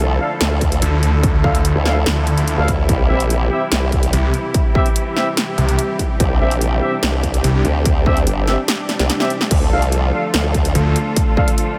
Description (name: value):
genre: heavy wobble dubstep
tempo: 145 BPM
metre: 4/4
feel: half-time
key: unclear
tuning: A4 = 440 Hz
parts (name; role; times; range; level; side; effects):
- muted studio string section; sustained chords; 0.0-11.8 s; C3 to A4; -25 LUFS; equal; sidechain pumping, low-pass filter
- formant-sweep wobble bass; bass; 0.0-10.7 s; G1 to D2; -20 LUFS; equal; chorus, overdrive
- mellow brass ensemble; stabs; 0.2-11.5 s; C4 to F5; -27 LUFS; equal; vintage 12-bit sampler grit, diffuse ambient delay
- big-room dance drum kit; drums; 0.4-11.7 s; crash cymbal, hi-hat, snare drum; -25 LUFS; equal; none
- electronic kick drum; drums; 0.6-11.5 s; none; -20 LUFS; equal; distortion
- snarling distorted saw bass; bass; 0.8-7.6, 10.8-10.9 s; C2 to D2; -18 LUFS; equal; distortion, overdrive
- swell; sound effects; 8.8-9.5 s; none; -37 LUFS; equal; none
room: light reverb, digital ambience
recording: none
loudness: -17 LUFS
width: mono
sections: 0.0-11.8 A section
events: swell 8.8-9.5; drum fill 8.9-9.5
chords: 0.0 Dm; 2.9 C; 9.5 Dm